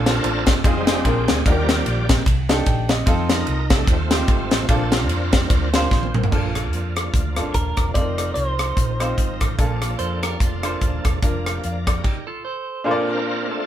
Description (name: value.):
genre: uptempo gospel.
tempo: 148 BPM.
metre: 4/4.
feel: swing 57% on 8ths.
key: Bb major.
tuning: A4 = 438 Hz.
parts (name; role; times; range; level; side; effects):
bright upright piano; accompaniment; 0.0-13.5 s; Bb2 to G5; -25 LUFS; equal; none.
bright tonewheel organ; sustained chords; 0.0-13.7 s; F3 to D5; -27 LUFS; right 1 dB; slow rotary speaker, chorus vibrato.
hollow-body short-scale fingered electric bass; bass; 0.0-12.0 s; Eb1 to F2; -24 LUFS; equal; none.
crisp fusion drum kit; drums; 0.1-12.2 s; crash cymbal, hi-hat, kick drum, ride cymbal, rim click, snare drum, toms; -20 LUFS; equal; none.
clean electric guitar; melody; 7.5-9.4 s; Bb4 to D5; -26 LUFS; right 1 dB; harmonic tremolo.
clean electric guitar; second line; 10.0-12.8 s; D4 to C5; -30 LUFS; right 5 dB; harmonic tremolo.
room: light reverb.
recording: band playing live in one room.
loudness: -18 LUFS.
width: side -11 dB against mid.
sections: 0.0-6.3 A section; 6.3-12.9 B section.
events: tonewheel organ solo 0.0-6.3; drum fill 5.9-6.3; stop 12.0-12.9.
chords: 0.0 Bbmaj7; 0.6 Fm7; 1.0 Bb9; 1.5 Ebmaj7; 3.1 F7; 4.7 Bbmaj7; 8.0 F7sus4; 9.6 Bbmaj7; 11.2 Bb/F; 12.0 N.C.; 12.9 Bbmaj7.